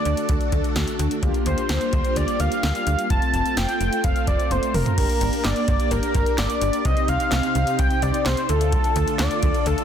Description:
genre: synth-pop.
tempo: 128 BPM.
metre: 4/4.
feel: straight.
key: G minor.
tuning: A4 = 441 Hz.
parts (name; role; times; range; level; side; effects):
octave-doubled lead; melody; 0.0-9.8 s; A4 to A5; -24 LUFS; equal; chorus, ping-pong delay.
mellow synth brass; accompaniment; 0.0-9.8 s; A3 to C5; -28 LUFS; equal; chorus, phaser.
string machine, violins; sustained chords; 0.0-9.8 s; C3 to A4; -29 LUFS; equal; ensemble chorus.
slap-like FM bass; bass; 0.1-9.8 s; F1 to D2; -24 LUFS; equal; none.
electro analog drum machine; drums; 0.1-9.8 s; crash cymbal, handclaps, hi-hat, kick drum, snare drum, toms; -24 LUFS; equal; none.
room: light reverb, digital ambience.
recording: dense, heavily limited modern master.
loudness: -19 LUFS.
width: side -8 dB against mid.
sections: 0.0-5.0 A section; 5.0-9.8 B section.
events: drum fill 4.5-5.0.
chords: 0.0 D; 1.2 Gm7/D; 3.1 F; 5.0 Gm; 6.9 Cm; 8.5 Dm.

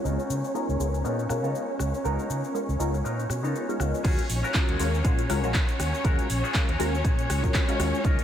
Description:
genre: filtered disco house.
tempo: 120 BPM.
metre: 4/4.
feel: swing 56% on 16ths.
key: Eb minor.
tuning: A4 = 437 Hz.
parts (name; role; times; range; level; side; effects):
funky polysynth comp; accompaniment; 0.0-8.2 s; Ab3 to Bb4; -31 LUFS; left 1 dB; chorus, phaser, sidechain pumping, low-pass filter.
dark studio violin section; sustained chords; 0.0-8.2 s; Db4 to Db5; -32 LUFS; equal; sidechain pumping, low-pass filter.
clean electric guitar; riff; 0.0-8.2 s; Cb4 to Db5; -37 LUFS; left 3 dB; wide subtle chorus, sidechain pumping, low-pass filter.
fingered electric bass; bass; 0.0-8.2 s; Bb1 to Db3; -28 LUFS; equal; sidechain pumping, low-pass filter.
house drum kit; drums; 0.1-8.2 s; crash cymbal, handclaps, hi-hat, rim click, shaker; -34 LUFS; equal; sidechain pumping on perc, small room ambience, sidechain pumping on hats, sidechain pumping on cymbals.
electronic kick drum; drums; 4.0-8.2 s; none; -24 LUFS; equal; small room ambience.
room: moderate cathedral reverb, RT60 5.9 s.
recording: dreamy mix soaked in reverb.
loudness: -24 LUFS.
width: side -10 dB against mid.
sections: 0.0-4.0 A section; 4.0-8.2 B section.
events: filter sweep 0.0-4.0; drop 4.0-8.2.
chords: 0.0 Db13; 4.0 Ebm11.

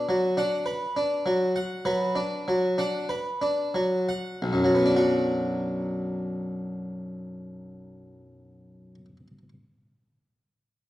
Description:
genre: classical, baroque-style suite movement for harpsichord.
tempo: 44-52 BPM.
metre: 4/4.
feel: rubato.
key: B minor.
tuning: A4 = 438 Hz.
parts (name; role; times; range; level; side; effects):
harpsichord; solo; 0.0-9.5 s; B1 to F#5; -24 LUFS; equal; none.
room: wet recital hall reverb, RT60 1.4 s.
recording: worn, warbling old tape, cassette tape, warbly pitch drift.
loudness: -24 LUFS.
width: side -15 dB against mid.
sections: 0.0-4.4 A section; 4.4-9.8 B section.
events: slowing down 0.0-4.4.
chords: 0.0 Bm.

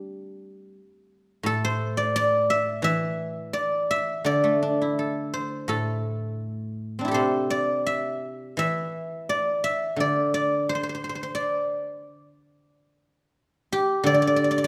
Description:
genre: chinese traditional, Chinese solo plucked strings.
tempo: 81-92 BPM.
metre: 4/4.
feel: rubato.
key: D shang mode.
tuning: A4 = 437 Hz.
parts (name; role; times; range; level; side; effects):
guzheng; solo; 0.0-14.7 s; A2 to E5; -26 LUFS; equal; none.
room: moderate recital hall reverb, RT60 1.4 s.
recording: none.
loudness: -26 LUFS.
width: mono.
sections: 0.0-14.7 A section.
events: none.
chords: none.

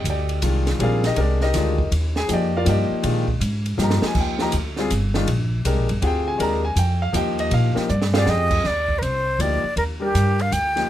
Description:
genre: modal jazz.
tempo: 161 BPM.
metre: 3/4.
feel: swing 65% on 8ths.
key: Eb major.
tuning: A4 = 441 Hz.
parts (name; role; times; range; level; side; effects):
clear concert grand piano; accompaniment; 0.0-10.9 s; Eb3 to Bb5; -23 LUFS; left 2 dB; none.
upright bass; bass; 0.0-10.9 s; G1 to Bb2; -22 LUFS; equal; none.
open jazz drum kit; drums; 0.1-10.8 s; crash cymbal, hi-hat, kick drum, ride cymbal, snare drum; -28 LUFS; right 2 dB; none.
breathy concert flute; melody; 8.2-10.9 s; G4 to G5; -21 LUFS; equal; none.
room: light reverb.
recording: close, detailed microphones.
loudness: -18 LUFS.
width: side -12 dB against mid.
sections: 0.0-8.6 A section; 8.6-10.9 B section.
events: drum fill 3.8-4.2, 7.9-8.3.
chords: 0.0 Ebmaj9.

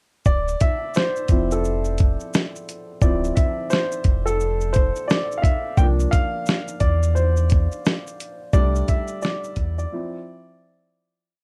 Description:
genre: lo-fi hip hop.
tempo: 87 BPM.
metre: 4/4.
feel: swing 63% on 16ths.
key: D minor.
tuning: A4 = 439 Hz.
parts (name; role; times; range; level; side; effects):
warm upright piano; accompaniment; 0.3-11.3 s; F3 to G5; -27 LUFS; equal; none.
sub bass with octave; bass; 0.3-9.9 s; D1 to E2; -24 LUFS; equal; none.
dusty soul sampler-style drum kit; drums; 0.3-9.9 s; hi-hat, kick drum, shaker, snare drum; -22 LUFS; equal; none.
room: light reverb.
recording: none.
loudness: -21 LUFS.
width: mono.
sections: 0.3-11.3 A section.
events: upright piano solo 0.3-11.3; fade-out 8.5-11.3; break 9.9-11.3.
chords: 0.3 Dm9; 5.8 C7sus4; 8.5 C69; 9.9 Dm9/F.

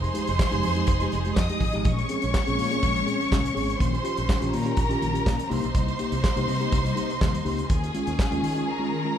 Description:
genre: disco.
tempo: 123 BPM.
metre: 4/4.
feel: straight.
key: Bb dorian.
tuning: A4 = 440 Hz.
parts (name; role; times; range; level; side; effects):
warm studio string section; second line; 0.0-9.2 s; Ab4 to Eb6; -29 LUFS; equal; none.
mellow tine electric piano; accompaniment; 0.0-9.2 s; Bb2 to Ab4; -29 LUFS; left 1 dB; none.
rich studio string section; sustained chords; 0.0-9.2 s; C3 to Ab4; -33 LUFS; left 1 dB; none.
modern bright fingered electric bass; bass; 0.0-8.6 s; F1 to Eb3; -29 LUFS; equal; none.
damped 70s drum kit; drums; 0.0-8.7 s; handclaps, hi-hat, kick drum, snare drum; -26 LUFS; equal; none.
room: moderate large studio reverb, RT60 1.4 s.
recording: band playing live in one room.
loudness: -22 LUFS.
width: side -9 dB against mid.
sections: 0.0-9.2 A section.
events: none.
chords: 0.0 Fm7; 1.9 Bbm7; 3.8 Eb7/Bb; 5.5 Cm7; 7.7 Eb7sus4.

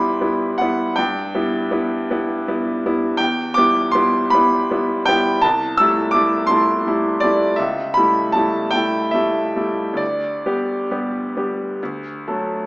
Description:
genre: classical, romantic nocturne for solo piano.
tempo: 65-85 BPM.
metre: 3/4.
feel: rubato.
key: E minor.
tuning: A4 = 440 Hz.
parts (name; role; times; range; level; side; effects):
bright grand piano; solo; 0.0-12.7 s; C2 to E6; -16 LUFS; equal; none.
room: moderate recital hall reverb, RT60 1.5 s.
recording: small speaker sound.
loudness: -16 LUFS.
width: side -24 dB against mid.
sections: 0.0-12.7 A section.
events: none.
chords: 0.0 Em; 1.0 Em/G; 3.2 Em; 5.4 Am7/C; 7.6 A7/C#; 10.0 G/D; 11.8 D.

